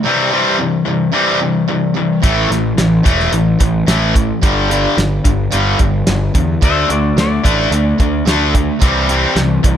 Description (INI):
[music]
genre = classic rock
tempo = 109 BPM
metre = 4/4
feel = straight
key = unclear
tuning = A4 = 440 Hz
[part]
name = distorted electric guitar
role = riff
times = 0.0-9.8 s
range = G2 to D4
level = -16 LUFS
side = left 6 dB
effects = distortion
[part]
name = distorted electric guitar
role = riff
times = 0.0-9.8 s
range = G2 to D4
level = -18 LUFS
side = right 6 dB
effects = overdrive
[part]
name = fuzz picked electric bass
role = bass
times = 2.2-9.8 s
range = E1 to E2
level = -17 LUFS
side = equal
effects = overdrive
[part]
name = cloth-damped thuddy drum kit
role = drums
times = 2.2-9.8 s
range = hi-hat, kick drum, snare drum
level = -15 LUFS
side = right 1 dB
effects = none
[part]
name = clean lap steel guitar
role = second line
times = 6.6-8.2 s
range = F#4 to E5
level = -21 LUFS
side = left 4 dB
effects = tape echo
[sound]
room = light reverb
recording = none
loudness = -12 LUFS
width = side -9 dB against mid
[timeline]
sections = 0.0-9.8 A section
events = none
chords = 0.0 C; 2.2 A5; 4.4 G5; 6.6 D5; 8.8 C